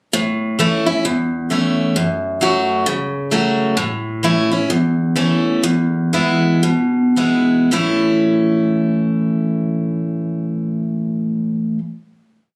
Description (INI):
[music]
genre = country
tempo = 106-132 BPM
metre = 4/4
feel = swing 60% on 8ths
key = A major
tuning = A4 = 445 Hz
[part]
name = picked steel-string acoustic guitar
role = solo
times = 0.1-11.8 s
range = E2 to F#4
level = -18 LUFS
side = equal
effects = none
[sound]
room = light reverb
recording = recorded on a phone in the room, club reverb, compression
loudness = -18 LUFS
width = mono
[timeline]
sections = 0.1-7.7 verse; 7.7-12.2 final chord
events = slowing down 3.8-7.7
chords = 0.1 A; 2.0 F#m; 3.8 A; 5.6 E; 7.7 A